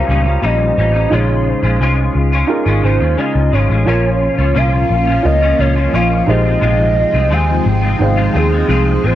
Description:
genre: indie pop, bedroom pop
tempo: 87 BPM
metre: 4/4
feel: straight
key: Bb dorian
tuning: A4 = 436 Hz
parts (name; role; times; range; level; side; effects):
- warbly nostalgic lead; melody; 0.0-9.2 s; Ab4 to Ab5; -19 LUFS; right 1 dB; wide subtle chorus
- semi-hollow electric guitar; accompaniment; 0.0-9.2 s; Bb2 to F4; -18 LUFS; left 3 dB; ensemble chorus, vibrato effect
- warm upright piano; accompaniment; 0.0-9.2 s; Db4 to G5; -21 LUFS; right 4 dB; none
- vintage muted picked electric bass; bass; 0.1-9.2 s; Ab1 to Eb2; -15 LUFS; equal; none
- phased string machine; sustained chords; 3.9-9.2 s; C3 to F4; -22 LUFS; equal; ensemble chorus, phaser
room: light reverb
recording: dark, warm production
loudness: -11 LUFS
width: side -12 dB against mid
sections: 0.0-9.2 A section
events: none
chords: 0.0 Eb7; 1.1 Dbmaj7/Bb; 3.9 Bbm; 6.3 Fm7

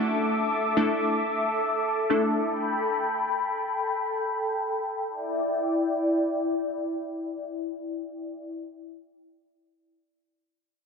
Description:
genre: dancehall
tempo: 90 BPM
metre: 4/4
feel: straight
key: E minor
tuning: A4 = 440 Hz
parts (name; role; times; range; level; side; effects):
- glassy wavetable pluck; accompaniment; 0.0-2.4 s; A3 to A4; -27 LUFS; equal; chorus, low-pass filter
- warm analog pad; sustained chords; 0.0-8.5 s; E4 to D6; -26 LUFS; left 1 dB; lush chorus, low-pass filter
room: moderate lush hall reverb, RT60 2.5 s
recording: dense, heavily limited modern master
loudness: -25 LUFS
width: side -5 dB against mid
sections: 0.0-5.1 A section; 5.1-7.8 B section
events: filter sweep 0.0-5.1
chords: 0.0 Asus4; 2.4 Gadd9; 5.1 Em7

